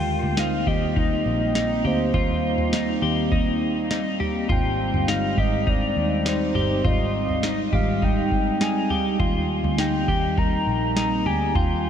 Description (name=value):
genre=dream pop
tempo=102 BPM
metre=4/4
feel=straight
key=Eb major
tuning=A4 = 440 Hz
part: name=soft octave-layered synth lead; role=melody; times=0.0-11.9 s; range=C5 to Bb5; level=-28 LUFS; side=equal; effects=chorus, analog delay
part: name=warbly tape-like pad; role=sustained chords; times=0.0-11.9 s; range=G3 to Eb4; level=-26 LUFS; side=right 1 dB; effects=chorus, built-in reverb
part: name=clean electric guitar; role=arpeggios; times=0.0-11.9 s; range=Eb4 to G4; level=-27 LUFS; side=left 3 dB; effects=analog chorus, analog delay
part: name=vintage muted picked electric bass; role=bass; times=0.0-11.9 s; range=G1 to Eb2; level=-27 LUFS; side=equal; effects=none
part: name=booming analog drum machine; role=drums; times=0.2-11.7 s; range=kick drum, snare drum, toms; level=-27 LUFS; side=equal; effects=none
part: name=vibraphone with medium mallets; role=texture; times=0.4-9.5 s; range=G4 to Bb5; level=-39 LUFS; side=right 2 dB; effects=none
room=wet huge ambient reverb, RT60 7.1 s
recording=dreamy mix soaked in reverb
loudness=-20 LUFS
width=side -8 dB against mid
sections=0.0-11.9 A section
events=none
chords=0.0 Eb6; 4.5 Abmaj7; 9.2 Eb6